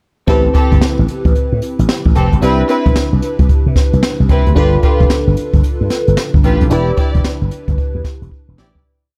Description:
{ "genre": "R&B, new jack swing", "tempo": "112 BPM", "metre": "4/4", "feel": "swing 63% on 16ths", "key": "A minor", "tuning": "A4 = 438 Hz", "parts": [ { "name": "FM electric piano with soft pad layer", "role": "accompaniment", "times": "0.3-8.9 s", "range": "C4 to B4", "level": "-21 LUFS", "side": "equal", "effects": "chorus, phaser" }, { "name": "warm studio string section", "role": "stabs", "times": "0.3-8.8 s", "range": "C4 to D5", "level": "-22 LUFS", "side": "equal", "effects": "none" }, { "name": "slap bass with an envelope filter", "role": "bass", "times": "0.3-8.8 s", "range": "E1 to C3", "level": "-16 LUFS", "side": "equal", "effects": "none" }, { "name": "jazz brush drum kit", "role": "drums", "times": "0.3-8.8 s", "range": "hi-hat, kick drum, snare drum", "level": "-16 LUFS", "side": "equal", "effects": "none" } ], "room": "studio reverb", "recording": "none", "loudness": "-13 LUFS", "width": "mono", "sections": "0.3-8.8 verse", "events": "fade-out 6.7-8.8; drum fill 8.3-8.8", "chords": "0.3 Am7; 2.4 Cmaj7; 4.6 G7; 6.7 Em7" }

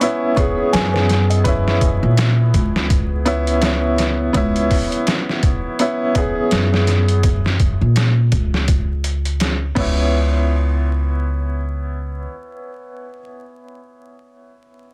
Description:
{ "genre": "trip hop", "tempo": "83 BPM", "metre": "4/4", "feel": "swing 59% on 16ths", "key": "C# dorian", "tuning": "A4 = 444 Hz", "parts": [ { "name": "bright upright piano", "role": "accompaniment", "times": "0.0-14.9 s", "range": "B3 to B4", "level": "-23 LUFS", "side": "equal", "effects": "tremolo, tape echo" }, { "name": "music box", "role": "arpeggios", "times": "0.0-1.4 s", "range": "B4 to C#6", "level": "-29 LUFS", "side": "equal", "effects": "vintage 12-bit sampler grit, tape echo" }, { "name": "trip hop sampler-style drum kit", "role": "drums", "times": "0.0-9.9 s", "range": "crash cymbal, hi-hat, kick drum, snare drum", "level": "-22 LUFS", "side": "equal", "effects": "none" }, { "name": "upright bass", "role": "bass", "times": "0.7-12.3 s", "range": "C#2 to A#2", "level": "-20 LUFS", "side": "equal", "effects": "none" } ], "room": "little or no reverb", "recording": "dense, heavily limited modern master, vinyl crackle", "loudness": "-17 LUFS", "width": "mono", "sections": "0.0-10.1 A section; 10.1-13.0 B section", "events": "none", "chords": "0.0 C#m7" }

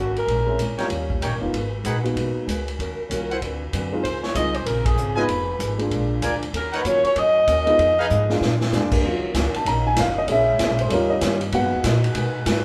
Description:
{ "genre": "jazz, big band swing", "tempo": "192 BPM", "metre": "4/4", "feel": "swing 63% on 8ths", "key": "Eb minor", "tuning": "A4 = 442 Hz", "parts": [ { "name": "mellow saxophone section", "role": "melody", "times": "0.0-0.8, 4.0-8.4 s", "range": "Gb4 to Eb5", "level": "-23 LUFS", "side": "equal", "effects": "none" }, { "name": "fingerpicked steel-string acoustic guitar", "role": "accompaniment", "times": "0.0-12.6 s", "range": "Bb2 to Cb5", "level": "-33 LUFS", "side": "equal", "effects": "none" }, { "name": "upright bass", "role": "bass", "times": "0.0-12.6 s", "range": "Eb1 to Cb3", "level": "-28 LUFS", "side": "equal", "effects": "none" }, { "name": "swinging big-band drum kit", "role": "drums", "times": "0.2-12.6 s", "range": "crash cymbal, hi-hat, kick drum, ride cymbal, snare drum", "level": "-29 LUFS", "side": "equal", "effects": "none" }, { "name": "warm upright piano", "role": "accompaniment", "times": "0.5-12.0 s", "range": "Gb3 to Bb5", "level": "-26 LUFS", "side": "equal", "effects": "none" }, { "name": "clear trumpet section", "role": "stabs", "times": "0.8-8.1 s", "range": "Eb4 to Ab5", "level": "-30 LUFS", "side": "equal", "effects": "none" }, { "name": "clear saxophone section", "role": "sustained chords", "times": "9.0-12.6 s", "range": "Db3 to Cb5", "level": "-35 LUFS", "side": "equal", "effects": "none" } ], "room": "moderate large studio reverb, RT60 0.8 s", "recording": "band playing live in one room", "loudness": "-22 LUFS", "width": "mono", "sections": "0.0-9.0 A section; 9.0-12.6 B section", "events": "band accent 4.8; drum fill 8.1-8.7; upright piano solo 9.0-12.6", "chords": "0.3 Bbm7b5; 0.9 Eb7; 1.5 Abm7; 2.8 Ebm7; 3.4 D6; 4.0 Dbmaj7; 5.3 Fm7b5; 5.9 Bb7; 6.5 Ebm7; 7.8 Fm7b5; 8.4 Bb7; 9.0 Ebm7; 10.3 Bbm7b5; 10.9 Eb7; 11.5 Abm7" }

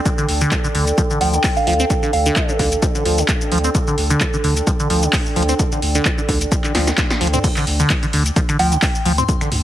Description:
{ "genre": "acid house", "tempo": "130 BPM", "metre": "4/4", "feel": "swing 55% on 16ths", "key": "D minor", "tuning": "A4 = 440 Hz", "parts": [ { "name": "warm analog pad", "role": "sustained chords", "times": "0.0-7.5 s", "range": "A4", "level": "-26 LUFS", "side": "right 4 dB", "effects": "chorus, sidechain pumping" }, { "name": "warbly tape-like pad", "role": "texture", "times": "0.0-7.4 s", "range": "D4 to G5", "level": "-27 LUFS", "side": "equal", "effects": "chorus, built-in reverb, sidechain pumping" }, { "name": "liquid acid bass", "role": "riff", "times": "0.1-9.5 s", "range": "D3 to C4", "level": "-21 LUFS", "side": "equal", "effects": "phaser, dub echo" }, { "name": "electro analog drum machine", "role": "drums", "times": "0.1-9.6 s", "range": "crash cymbal, finger snaps, handclaps, hi-hat, shaker, snare drum, toms", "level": "-22 LUFS", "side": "equal", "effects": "none" }, { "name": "electronic kick drum", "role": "drums", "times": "0.1-9.4 s", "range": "none", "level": "-20 LUFS", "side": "equal", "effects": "none" }, { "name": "warm sub bass", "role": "bass", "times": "0.3-9.6 s", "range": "D2", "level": "-20 LUFS", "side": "equal", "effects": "sidechain pumping" }, { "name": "soft synth bell", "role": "melody", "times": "1.2-2.5, 8.6-9.3 s", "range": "F5 to C6", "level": "-22 LUFS", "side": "right 1 dB", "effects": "chorus, phaser, tape echo" } ], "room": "light reverb, digital ambience", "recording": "heavily compressed radio sound, multiband compression", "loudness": "-15 LUFS", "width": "side -12 dB against mid", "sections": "0.0-7.4 A section; 7.4-9.6 B section", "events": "drum fill 6.7-7.4; drop 7.4-9.6", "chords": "0.0 Dm" }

